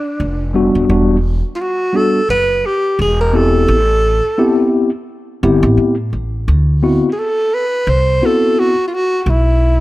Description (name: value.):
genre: hip hop, jazz-hop.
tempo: 86 BPM.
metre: 4/4.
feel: swing 57% on 16ths.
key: unclear.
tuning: A4 = 439 Hz.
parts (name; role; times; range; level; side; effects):
breathy alto saxophone; melody; 0.0-9.8 s; D4 to C5; -15 LUFS; right 1 dB; slapback echo.
upright bass; bass; 0.2-9.8 s; D#1 to A2; -15 LUFS; equal; none.
mellow tine electric piano; accompaniment; 0.5-8.7 s; G3 to G4; -15 LUFS; left 2 dB; medium stereo tremolo.
room: little or no reverb.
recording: none.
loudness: -12 LUFS.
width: side -17 dB against mid.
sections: 0.0-6.5 A section; 6.5-9.8 A section.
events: none.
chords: 0.2 Fsus2; 0.9 Em9; 3.0 Em; 3.7 Am9; 6.5 D13; 9.3 N.C..